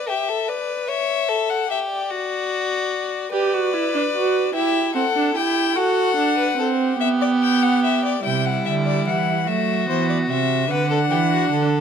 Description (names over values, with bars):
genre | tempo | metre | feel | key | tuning
classical, baroque-style fugue for string quartet | 49 BPM (dotted quarters) | 6/8 | straight | G major | A4 = 441 Hz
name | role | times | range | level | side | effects
rich violin | melody | 0.0-11.8 s | C5 to G5 | -23 LUFS | left 10 dB | none
rich violin | second line | 0.0-11.8 s | E4 to C#5 | -24 LUFS | left 2 dB | none
rich viola | accompaniment | 3.3-11.8 s | G3 to G4 | -21 LUFS | right 5 dB | none
rich cello | bass | 8.3-11.8 s | C3 to F#3 | -23 LUFS | right 6 dB | none
room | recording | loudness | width
moderate recital hall reverb, RT60 1.6 s | close, detailed microphones | -18 LUFS | side -7 dB against mid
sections
0.0-8.2 A section; 8.2-11.8 B section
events
none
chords
0.0 Bm; 0.9 A; 2.1 D/F#; 3.3 G; 4.6 Em; 5.8 D; 7.0 G/B; 8.2 C; 9.5 F#m7b5; 10.7 Bm/D (rootless)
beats
| 0.90 2.11 | 3.33 4.56 | 5.77 7.00 | 8.25 9.49 | 10.71